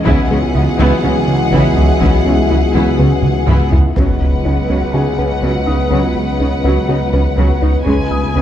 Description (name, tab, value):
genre	cinematic, hybrid orchestral and electronic film score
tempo	123 BPM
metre	4/4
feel	straight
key	unclear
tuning	A4 = 442 Hz
part	warm symphonic violin section	second line	0.0-8.4 s	G#4 to F#5	-23 LUFS	left 3 dB	none
part	clear trombone section	sustained chords	0.0-3.7 s	E3 to G#3	-23 LUFS	right 1 dB	none
part	dark analog pad	sustained chords	0.0-8.4 s	F#3 to E5	-22 LUFS	right 2 dB	lush chorus
part	swelling detuned saw bass	bass	0.0-8.4 s	C#2	-19 LUFS	equal	none
part	felt-muted upright piano	texture	0.0-8.4 s	E4 to D#6	-27 LUFS	left 5 dB	digital delay
part	rich symphonic viola section	accompaniment	0.1-8.4 s	F#3 to E4	-23 LUFS	right 1 dB	none
part	dark French horn section	sustained chords	0.1-3.7 s	B3 to F#4	-22 LUFS	left 8 dB	none
part	soft round pluck	arpeggios	0.1-8.4 s	E3 to B4	-24 LUFS	left 4 dB	none
part	round analog bass	riff	0.1-8.4 s	C#2 to C#3	-18 LUFS	right 1 dB	none
part	rich symphonic cello section	bass	0.1-8.4 s	C#3	-21 LUFS	right 2 dB	none
part	warm symphonic double bass section	bass	0.1-3.8 s	C#2	-21 LUFS	right 2 dB	none
part	taiko ensemble	drums	0.1-4.9, 7.9-8.4 s	none	-19 LUFS	equal	none
part	warm symphonic violin section	melody	4.0-8.4 s	F#5 to G#5	-24 LUFS	left 6 dB	none
part	impact	sound effects	4.0-5.9 s	none	-24 LUFS	equal	none
room	moderate scoring stage reverb, RT60 2.0 s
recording	dark, warm production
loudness	-11 LUFS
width	side -10 dB against mid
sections	0.0-4.0 A section; 4.0-8.4 B section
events	drum fill 3.2-4.0; impact 4.0-5.9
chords	0.1 Eadd9/C#; 4.0 B/C#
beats	| 0.06 0.55 1.04 1.52 | 2.01 2.50 2.99 3.48 | 3.96 4.45 4.94 5.43 | 5.92 6.40 6.89 7.38 | 7.87 8.35